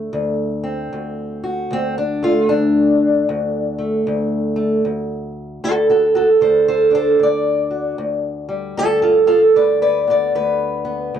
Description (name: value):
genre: acoustic country blues, solo or duo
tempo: 76 BPM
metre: 4/4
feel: swing 63% on 8ths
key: D mixolydian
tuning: A4 = 440 Hz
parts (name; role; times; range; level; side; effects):
- fingerpicked old ladder-braced acoustic guitar; solo; 0.0-11.2 s; D2 to D5; -15 LUFS; right 1 dB; none
room: moderate booth ambience, RT60 0.2 s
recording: dry, close 1970s-style studio recording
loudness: -15 LUFS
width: side -9 dB against mid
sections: 0.0-11.2 A section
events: steel-string acoustic guitar solo 0.0-11.2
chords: 0.0 D7(no3); 8.0 G7